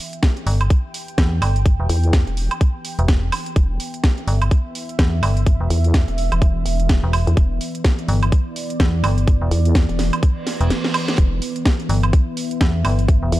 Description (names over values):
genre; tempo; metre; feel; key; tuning
bass house; 126 BPM; 4/4; swing 59% on 16ths; E minor; A4 = 442 Hz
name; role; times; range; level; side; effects
deep dark ambient pad; sustained chords; 0.0-13.4 s; E3 to G5; -27 LUFS; right 1 dB; chorus, built-in reverb, sidechain pumping
house drum kit; drums; 0.1-13.4 s; hi-hat, snare drum, woodblock; -25 LUFS; right 1 dB; none
electronic kick drum; drums; 0.2-13.2 s; none; -15 LUFS; equal; none
metallic FM bass; bass; 0.5-13.3 s; E1 to E2; -18 LUFS; equal; sidechain pumping
vowel-sweep wobble bass; bass; 1.9-13.4 s; E1 to E2; -19 LUFS; equal; chorus, tube saturation, sidechain pumping
reverse cymbal; sound effects; 10.4-11.2 s; none; -31 LUFS; right 3 dB; none
room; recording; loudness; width
little or no reverb; dark, warm production; -16 LUFS; side -16 dB against mid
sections
0.0-13.4 A section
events
reverse cymbal 10.4-11.2; drum fill 10.5-11.2; kick drops out 10.7-11.2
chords
0.0 E5